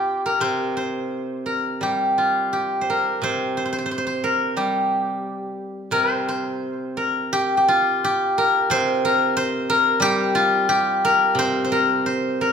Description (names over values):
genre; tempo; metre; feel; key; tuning
chinese traditional, Chinese solo plucked strings; 82-93 BPM; 2/4; rubato; unclear; A4 = 439 Hz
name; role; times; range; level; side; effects
steel-string zither; solo; 0.0-12.5 s; C3 to C5; -19 LUFS; equal; none
room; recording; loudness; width
moderate recital hall reverb, RT60 1.6 s; recorded in a church or concert hall; -19 LUFS; side -7 dB against mid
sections
0.0-7.3 A section; 7.3-12.5 B section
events
none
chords
none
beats
| 0.43 1.12 | 1.83 2.55 | 3.23 3.91 | 4.58 5.24 | 5.92 6.60 | 7.31 8.02 | 8.71 9.37 | 10.02 10.70 | 11.38 12.09